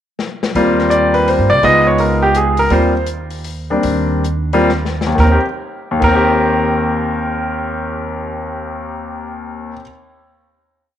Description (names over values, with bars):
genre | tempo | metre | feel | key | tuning
jazz piano trio | 117-166 BPM | 3/4 | swing 63% on 8ths | Eb major | A4 = 440 Hz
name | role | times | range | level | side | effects
open jazz drum kit | drums | 0.2-6.1 s | crash cymbal, hi-hat, kick drum, snare drum | -26 LUFS | left 5 dB | none
clear concert grand piano | melody | 0.6-9.8 s | Eb2 to Eb5 | -14 LUFS | left 1 dB | slapback echo
upright bass | bass | 0.6-9.7 s | C2 to G2 | -19 LUFS | right 2 dB | none
room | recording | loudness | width
moderate spring reverb, RT60 2.0 s | 1960s-style stereo | -13 LUFS | side -10 dB against mid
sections
0.0-0.5 pickup bar; 0.5-5.2 A section; 5.2-8.3 final chord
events
drum fill 0.2-0.5, 4.7-5.2; slowing down 2.7-5.2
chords
0.0 N.C.; 0.5 Eb6; 1.6 Db9; 2.7 Eb6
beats
0.18 | 0.55 0.91 1.27 | 1.63 1.99 2.35 | 2.71 3.08 3.45 | 3.84 4.25 4.70 | 5.18 5.70 6.21 | 6.72 7.24 7.75